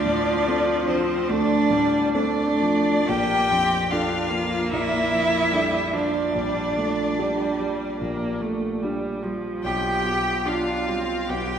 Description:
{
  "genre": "classical, slow romantic movement for piano quintet",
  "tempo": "73 BPM",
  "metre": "4/4",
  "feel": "rubato",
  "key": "unclear",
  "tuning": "A4 = 441 Hz",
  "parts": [
    { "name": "rich violin", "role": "melody", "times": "0.0-11.6 s", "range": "C5 to G5", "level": "-28 LUFS", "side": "left 4 dB", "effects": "none" },
    { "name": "rich cello", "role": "second line", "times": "0.0-11.6 s", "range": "C4 to G4", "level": "-24 LUFS", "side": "right 2 dB", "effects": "none" },
    { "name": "rich violin", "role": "second line", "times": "0.0-11.6 s", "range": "C5 to G5", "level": "-30 LUFS", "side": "left 1 dB", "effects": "none" },
    { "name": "dark concert grand piano", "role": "accompaniment", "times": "0.0-11.6 s", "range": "Bb1 to A4", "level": "-28 LUFS", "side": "left 1 dB", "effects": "none" },
    { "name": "rich viola", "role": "accompaniment", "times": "0.0-11.6 s", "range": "F3 to D4", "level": "-28 LUFS", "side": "right 1 dB", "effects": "none" }
  ],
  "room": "wet concert hall reverb, RT60 1.9 s",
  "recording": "none",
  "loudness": "-20 LUFS",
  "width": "side -8 dB against mid",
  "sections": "0.0-11.6 A section",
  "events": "none",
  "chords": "0.0 Dm7; 3.1 Bbmaj7; 6.4 Gm/Bb; 9.6 G7/B",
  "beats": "0.47 1.30 2.14 | 3.08 3.92 4.72 5.53 | 6.35 7.18 8.00 8.83 | 9.64 10.46 11.29"
}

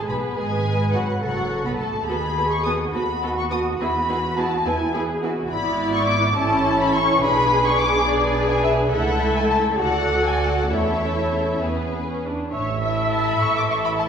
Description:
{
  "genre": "quick classical-period movement for string orchestra",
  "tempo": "70 BPM (dotted quarters)",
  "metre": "6/8",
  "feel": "rubato",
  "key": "E major, A major from 5.5 s",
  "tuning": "A4 = 437 Hz",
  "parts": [
    { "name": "muted studio violin section", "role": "second line", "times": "0.0-14.1 s", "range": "E4 to E5", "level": "-27 LUFS", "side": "left 2 dB", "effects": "none" },
    { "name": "muted studio viola section", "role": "accompaniment", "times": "0.0-14.1 s", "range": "F#3 to E5", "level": "-26 LUFS", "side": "right 2 dB", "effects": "none" },
    { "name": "muted studio cello section", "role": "bass", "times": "0.0-14.1 s", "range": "A2 to B4", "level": "-26 LUFS", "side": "right 2 dB", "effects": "none" },
    { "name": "muted studio double bass section", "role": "bass", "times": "0.0-14.1 s", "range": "F#1 to E2", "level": "-27 LUFS", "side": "right 2 dB", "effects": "none" },
    { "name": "muted studio violin section", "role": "melody", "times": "0.1-14.1 s", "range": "C#5 to D#6", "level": "-23 LUFS", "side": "left 3 dB", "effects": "none" }
  ],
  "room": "wet recital hall reverb, RT60 1.6 s",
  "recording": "recorded in a church or concert hall",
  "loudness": "-19 LUFS",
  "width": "side -7 dB against mid",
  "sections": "0.0-12.5 A section; 12.5-14.1 B section",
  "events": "none",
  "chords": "0.4 F#m; 2.1 B7/D#; 3.8 E; 5.5 E7/G#; 6.4 A; 7.2 G#dim/B; 8.9 A/C#; 9.8 D; 10.7 A/E; 11.6 E; 12.5 A5",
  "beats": "| 0.36 1.22 | 2.08 2.94 | 3.80 4.65 | 5.51 6.36 | 7.21 8.06 | 8.92 9.80 | 10.71 11.63 | 12.54 13.41"
}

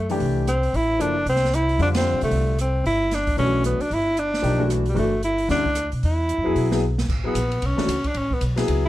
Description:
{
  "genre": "modal jazz",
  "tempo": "227 BPM",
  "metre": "4/4",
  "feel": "swing 60% on 8ths",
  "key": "F major",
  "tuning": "A4 = 439 Hz",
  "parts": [
    { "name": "breathy tenor saxophone", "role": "melody", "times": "0.0-8.9 s", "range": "G3 to E4", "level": "-23 LUFS", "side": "equal", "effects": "plate reverb" },
    { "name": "upright bass", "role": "bass", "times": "0.0-8.9 s", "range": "Gb1 to C3", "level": "-24 LUFS", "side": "equal", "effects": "none" },
    { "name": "warm upright piano", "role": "accompaniment", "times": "0.1-8.9 s", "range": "D3 to A4", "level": "-25 LUFS", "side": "left 2 dB", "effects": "none" },
    { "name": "open jazz drum kit", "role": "drums", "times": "0.1-8.8 s", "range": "crash cymbal, hi-hat, kick drum, ride cymbal, rim click, snare drum", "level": "-30 LUFS", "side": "right 1 dB", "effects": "none" }
  ],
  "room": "light reverb",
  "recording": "dark, warm production",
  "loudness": "-19 LUFS",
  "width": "side -15 dB against mid",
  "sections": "0.0-7.1 A section; 7.1-8.9 B section",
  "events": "band accent 1.9; drum fill 6.8; tenor saxophone solo 7.1-8.9",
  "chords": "0.0 Fmaj9; 2.9 Gmaj9; 6.0 Eadd9; 7.1 Amaj9",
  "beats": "0.21 0.47 | 0.74 1.00 1.27 1.53 | 1.79 2.06 2.32 2.59 | 2.85 3.12 3.38 3.65 | 3.91 4.17 4.44 4.70 | 4.97 5.23 5.50 5.76 | 6.03 6.29 6.56 6.82 | 7.09 7.35 7.62 7.88 | 8.15 8.41 8.68"
}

